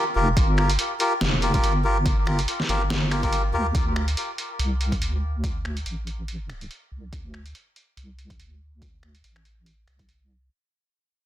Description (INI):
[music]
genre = deep dubstep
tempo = 142 BPM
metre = 4/4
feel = swing 56% on 16ths, half-time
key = unclear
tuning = A4 = 440 Hz
[part]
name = melodica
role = stabs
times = 0.0-3.7 s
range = F4 to Bb4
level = -26 LUFS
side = left 1 dB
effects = dub echo
[part]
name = deep soft wobble bass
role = bass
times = 0.2-10.5 s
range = F1 to D2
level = -25 LUFS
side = equal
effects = chorus
[part]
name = electronic kick drum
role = drums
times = 0.4-10.1 s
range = none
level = -25 LUFS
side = equal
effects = overdrive, studio reverb
[part]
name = trip hop sampler-style drum kit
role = drums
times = 0.4-10.2 s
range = finger snaps, hi-hat, snare drum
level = -29 LUFS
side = equal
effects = overdrive, studio reverb
[sound]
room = light reverb, digital ambience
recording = dense, heavily limited modern master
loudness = -21 LUFS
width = side -12 dB against mid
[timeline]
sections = 0.0-10.5 A section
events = fade-out 0.0-10.5; filter sweep on wobble bass 0.0-10.5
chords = 0.0 Gm7; 3.7 D5